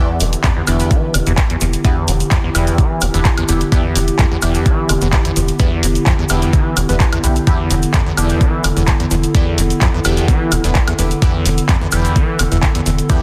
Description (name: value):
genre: acid house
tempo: 128 BPM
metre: 4/4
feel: straight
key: E minor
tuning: A4 = 440 Hz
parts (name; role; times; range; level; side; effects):
- warbly tape-like pad; sustained chords; 0.3-13.2 s; D3 to A4; -23 LUFS; equal; chorus, built-in reverb, sidechain pumping
- liquid acid bass; riff; 0.0-13.2 s; E2 to E3; -22 LUFS; equal; tube saturation, analog chorus, dub echo
- band-passed chord stab; stabs; 0.0-13.2 s; B3 to B4; -28 LUFS; equal; phaser, subtle chorus, dub echo
- round analog bass; bass; 0.2-13.0 s; E1 to B1; -21 LUFS; equal; sidechain pumping
- punchy analog drum machine; drums; 0.2-13.2 s; handclaps, hi-hat, woodblock; -24 LUFS; equal; none
- tube shaker; percussion; 0.2-13.2 s; none; -30 LUFS; equal; none
- electronic kick drum; drums; 0.4-13.2 s; none; -16 LUFS; equal; none
room: light reverb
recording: dense, heavily limited modern master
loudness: -15 LUFS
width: mono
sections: 0.0-13.2 A section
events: none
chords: 0.0 Em7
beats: 0.44 0.91 1.38 | 1.85 2.31 2.78 3.25 | 3.72 4.19 4.66 5.13 | 5.60 6.06 6.53 7.00 | 7.47 7.94 8.41 8.88 | 9.35 9.81 10.28 10.75 | 11.22 11.69 12.16 12.63 | 13.10